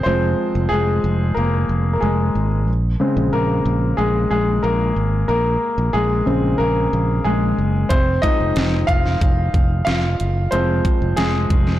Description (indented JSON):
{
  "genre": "piano-driven pop",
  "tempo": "92 BPM",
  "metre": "4/4",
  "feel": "straight",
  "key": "Bb minor",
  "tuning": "A4 = 439 Hz",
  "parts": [
    { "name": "clear baby grand piano", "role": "accompaniment", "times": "0.0-11.8 s", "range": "Db3 to F5", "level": "-19 LUFS", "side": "left 1 dB", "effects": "none" },
    { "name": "fingered electric bass", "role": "bass", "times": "0.1-11.8 s", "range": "F1 to Bb1", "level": "-20 LUFS", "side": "right 1 dB", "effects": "none" },
    { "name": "pop drum kit", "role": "drums", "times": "7.9-11.7 s", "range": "hi-hat, kick drum, snare drum", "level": "-19 LUFS", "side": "equal", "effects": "none" }
  ],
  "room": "light reverb, small room ambience",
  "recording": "blown-out, overdriven recording, overdrive",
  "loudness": "-16 LUFS",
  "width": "side -14 dB against mid",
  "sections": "0.0-11.8 A section",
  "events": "grand piano solo 0.0-11.8",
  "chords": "0.0 Fm; 2.7 Bbm7; 7.9 Fm",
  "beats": "| 0.06 0.72 1.37 2.02 | 2.68 3.33 3.98 4.64 | 5.29 5.95 6.60 7.25 | 7.91 8.56 9.21 9.87 | 10.52 11.18"
}